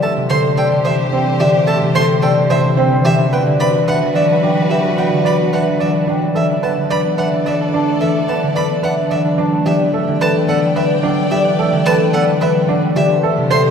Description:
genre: classical, minimalist pattern music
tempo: 109 BPM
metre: 3/4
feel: straight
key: A dorian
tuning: A4 = 440 Hz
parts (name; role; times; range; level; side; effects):
- vibraphone with medium mallets; melody; 0.0-13.7 s; A4 to A5; -19 LUFS; left 3 dB; none
- concert harp; accompaniment; 0.0-13.7 s; C3 to D4; -16 LUFS; left 1 dB; none
- rich symphonic violin section; sustained chords; 0.0-13.7 s; F#4 to G5; -25 LUFS; equal; none
- clear violin; arpeggios; 0.0-13.6 s; E5 to C6; -24 LUFS; equal; none
- warm baby grand piano; arpeggios; 0.0-13.7 s; C4 to D5; -20 LUFS; right 6 dB; none
room: wet cathedral reverb, RT60 5.6 s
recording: recorded in a church or concert hall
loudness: -13 LUFS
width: side -7 dB against mid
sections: 0.0-13.7 A section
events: none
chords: 0.0 Am7; 3.0 Gmaj7; 6.4 Bm7; 9.7 Em9; 13.0 Am7

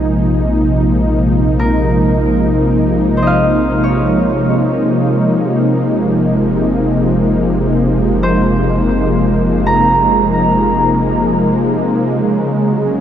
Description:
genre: ambient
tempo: free time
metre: none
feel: none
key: unclear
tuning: A4 = 440 Hz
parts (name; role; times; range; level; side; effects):
- warm analog pad; sustained chords; 0.0-13.0 s; C3 to Eb4; -12 LUFS; equal; chorus
- concert harp; arpeggios; 0.0-12.5 s; Ab4 to Bb5; -19 LUFS; right 2 dB; tape echo
- deep rumbling drone; bass; 0.0-13.0 s; Gb1 to Bb1; -21 LUFS; equal; built-in reverb
room: moderate huge ambient reverb, RT60 8.8 s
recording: none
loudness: -11 LUFS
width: side -10 dB against mid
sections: 0.0-13.0 A section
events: none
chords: 0.0 Bbm7; 5.1 Gbmaj7; 12.1 Amaj7

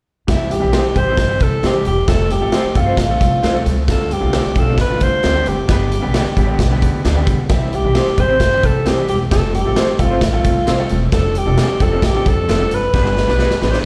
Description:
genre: uptempo 1960s-style soul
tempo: 133 BPM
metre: 4/4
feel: straight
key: C major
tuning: A4 = 440 Hz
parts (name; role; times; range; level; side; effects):
- breathy alto saxophone; melody; 0.3-13.9 s; E4 to C5; -21 LUFS; equal; plate reverb, slapback echo
- clear baby grand piano; accompaniment; 0.3-13.8 s; D3 to B4; -26 LUFS; equal; plate reverb, slapback echo
- upright bass; bass; 0.3-13.8 s; E1 to D3; -21 LUFS; equal; none
- raw garage drum kit; drums; 0.3-13.8 s; hi-hat, kick drum, snare drum; -20 LUFS; equal; none
- electric guitar through a small old amp; stabs; 0.7-13.8 s; C4 to D5; -27 LUFS; equal; lush chorus, plate reverb, slapback echo, analog delay
- warm horn section; second line; 5.7-5.8, 12.9-13.1 s; G3 to B4; -30 LUFS; equal; plate reverb, slapback echo
room: light reverb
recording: live gig heard through the venue's PA, club reverb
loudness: -16 LUFS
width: mono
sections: 0.3-13.9 A section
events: band accent 5.7-7.5, 12.9-13.9; drum fill 12.9-13.9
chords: 0.3 C; 2.1 F; 3.9 Dm7; 5.7 G; 7.5 C; 9.3 F; 11.1 Dm7; 12.9 G

